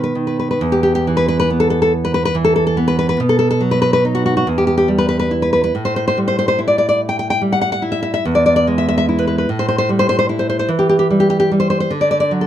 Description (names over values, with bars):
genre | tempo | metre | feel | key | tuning
romantic piece for solo classical guitar | 48 BPM (dotted quarters) | 6/8 | uneven beats, rubato | E minor | A4 = 440 Hz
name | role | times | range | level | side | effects
nylon-string guitar | solo | 0.0-12.5 s | E2 to G5 | -13 LUFS | equal | none
room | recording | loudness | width
light reverb | close, detailed microphones | -13 LUFS | side -11 dB against mid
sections
0.6-12.5 A section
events
none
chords
0.0 B; 0.6 E5; 3.2 B; 4.5 Em; 5.7 A5; 8.2 E; 9.5 A5; 10.7 Em; 11.9 Bm/D (rootless)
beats
| 0.61 1.91 | 3.19 4.46 | 5.74 7.01 | 8.24 9.48 | 10.69 11.91